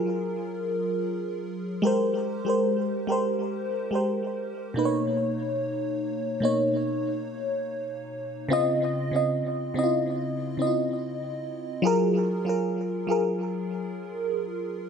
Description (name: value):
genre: R&B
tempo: 72 BPM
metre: 4/4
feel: straight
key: F# major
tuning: A4 = 436 Hz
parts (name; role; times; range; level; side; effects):
- FM electric piano with soft pad layer; solo; 0.0-14.9 s; B2 to D#5; -25 LUFS; equal; chorus, phaser, tape echo
room: moderate echo chamber reverb, RT60 1.6 s, digital ambience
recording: echo-heavy mix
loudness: -25 LUFS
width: side -6 dB against mid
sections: 0.0-11.8 A section; 11.8-14.9 B section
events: none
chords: 0.0 F#maj9; 1.8 G#maj9; 4.8 Bmaj9; 8.5 C#maj9; 11.8 F#maj9